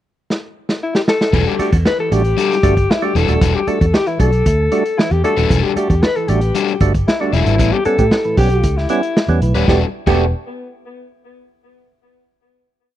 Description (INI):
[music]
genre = funk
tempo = 115 BPM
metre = 4/4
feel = straight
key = E dorian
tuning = A4 = 440 Hz
[part]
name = vintage drum kit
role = drums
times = 0.3-10.2 s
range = crash cymbal, hi-hat, kick drum, snare drum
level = -17 LUFS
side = equal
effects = none
[part]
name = breathy alto saxophone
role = melody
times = 0.8-10.3 s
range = B3 to B4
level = -19 LUFS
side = left 3 dB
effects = tape echo
[part]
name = crunchy overdriven guitar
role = accompaniment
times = 1.3-10.2 s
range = G3 to B4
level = -20 LUFS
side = left 10 dB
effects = none
[part]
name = percussive tonewheel organ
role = stabs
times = 1.3-10.3 s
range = A2 to F#4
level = -21 LUFS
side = right 4 dB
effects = overdrive, slow rotary speaker
[part]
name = vintage muted fingered electric bass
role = bass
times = 1.3-10.3 s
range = D#1 to A2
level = -16 LUFS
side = equal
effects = none
[part]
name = breathy trombone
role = second line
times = 8.0-10.3 s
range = G4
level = -21 LUFS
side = right 10 dB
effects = tube saturation
[sound]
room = studio ambience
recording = dry, close 1970s-style studio recording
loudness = -13 LUFS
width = side -12 dB against mid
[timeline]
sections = 0.0-1.3 pickup bar; 1.3-9.7 A section; 9.7-11.8 final chord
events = drum fill 0.3-1.3; band accent 7.6-9.7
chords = 0.0 N.C.; 1.3 Em11; 7.6 A9; 9.7 Em11